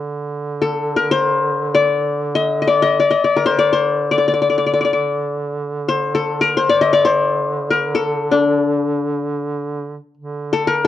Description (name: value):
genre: Arabic maqam ensemble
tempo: free time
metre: none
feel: none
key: D maqam huzam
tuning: A4 = 435 Hz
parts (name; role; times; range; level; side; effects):
- clear duduk; drone; 0.0-10.9 s; D3; -24 LUFS; right 3 dB; none
- qanun; melody; 0.6-10.9 s; D4 to E5-50c; -15 LUFS; left 4 dB; cassette tape
room: light reverb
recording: home recording on cassette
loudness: -15 LUFS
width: side -12 dB against mid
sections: 0.0-10.2 A section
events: none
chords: none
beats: free time